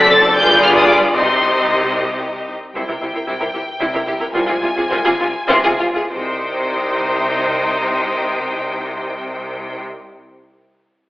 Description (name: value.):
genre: quick classical-period movement for string orchestra.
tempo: 64-78 BPM (dotted quarters).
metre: 6/8.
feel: straight.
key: C minor.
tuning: A4 = 440 Hz.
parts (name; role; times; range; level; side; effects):
clear studio violin section; melody; 0.0-9.8 s; G5 to B6; -20 LUFS; left 1 dB; none.
clear studio violin section; second line; 0.0-9.8 s; C4 to Eb5; -20 LUFS; equal; none.
rich studio viola section; accompaniment; 0.0-9.8 s; B3 to A4; -20 LUFS; equal; none.
bright studio double bass section; bass; 0.0-9.8 s; F#1 to C2; -26 LUFS; equal; none.
rich studio cello section; bass; 0.0-9.8 s; F#2 to C3; -23 LUFS; equal; none.
room: wet recital hall reverb, RT60 1.5 s.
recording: recorded in a church or concert hall, telephone sound.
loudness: -14 LUFS.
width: side -17 dB against mid.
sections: 0.0-2.8 A section; 2.8-6.1 B section; 6.1-9.8 C section.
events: slowing down 2.0-6.1.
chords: 0.4 G7b9; 1.2 Cm; 2.8 C; 4.3 Fm/C; 6.1 Cm.